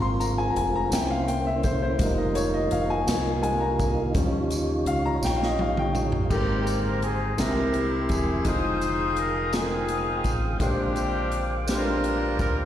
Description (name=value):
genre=slow gospel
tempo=56 BPM (dotted quarters)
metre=6/8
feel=straight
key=Ab major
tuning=A4 = 441 Hz
part: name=clear baby grand piano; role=accompaniment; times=0.0-12.7 s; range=Ab2 to C6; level=-28 LUFS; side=left 2 dB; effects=slapback echo
part: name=tonewheel organ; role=sustained chords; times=0.0-12.7 s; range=G3 to Eb6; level=-30 LUFS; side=right 3 dB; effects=slow rotary speaker, overdrive
part: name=fingered electric bass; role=bass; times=0.0-12.7 s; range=E1 to Eb2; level=-29 LUFS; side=equal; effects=none
part: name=swinging big-band drum kit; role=drums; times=0.2-12.6 s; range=crash cymbal, hi-hat, kick drum, snare drum, toms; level=-30 LUFS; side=equal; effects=none
part: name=tambourine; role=percussion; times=0.2-12.7 s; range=none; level=-39 LUFS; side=right 3 dB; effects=none
part: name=warm horn section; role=melody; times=6.3-12.7 s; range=Bb3 to C5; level=-27 LUFS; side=left 1 dB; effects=slapback echo
room=light reverb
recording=live gig heard through the venue's PA, recital hall reverb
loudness=-22 LUFS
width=side -11 dB against mid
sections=0.0-6.3 A section; 6.3-12.7 B section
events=grand piano solo 0.0-6.3; drum fill 5.2-6.3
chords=0.0 Ab69; 0.9 C7b9; 2.0 Fm11; 4.2 Eb9; 6.3 Abmaj9; 7.4 C7b13; 8.5 Fm9; 10.6 Bb13